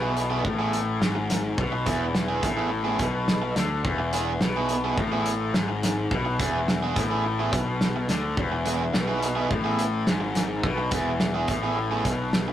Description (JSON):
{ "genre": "indie rock", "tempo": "106 BPM", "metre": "4/4", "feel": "straight", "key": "E major", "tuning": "A4 = 441 Hz", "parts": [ { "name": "fuzz guitar", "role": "riff", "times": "0.0-12.5 s", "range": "E2 to D3", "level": "-27 LUFS", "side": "left 3 dB", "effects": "distortion" }, { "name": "overdriven electric guitar", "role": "riff", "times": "0.0-12.5 s", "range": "B3 to G#4", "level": "-29 LUFS", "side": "right 5 dB", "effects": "none" }, { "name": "fuzz picked electric bass", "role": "bass", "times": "0.0-12.5 s", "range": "E1 to D2", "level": "-30 LUFS", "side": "equal", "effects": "overdrive" }, { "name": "loose indie drum kit", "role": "drums", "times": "0.2-12.5 s", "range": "hi-hat, kick drum, snare drum", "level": "-27 LUFS", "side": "equal", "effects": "none" } ], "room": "light reverb", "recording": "rough rehearsal-room recording", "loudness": "-23 LUFS", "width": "side -11 dB against mid", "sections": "0.0-12.5 A section", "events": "none", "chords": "0.0 E" }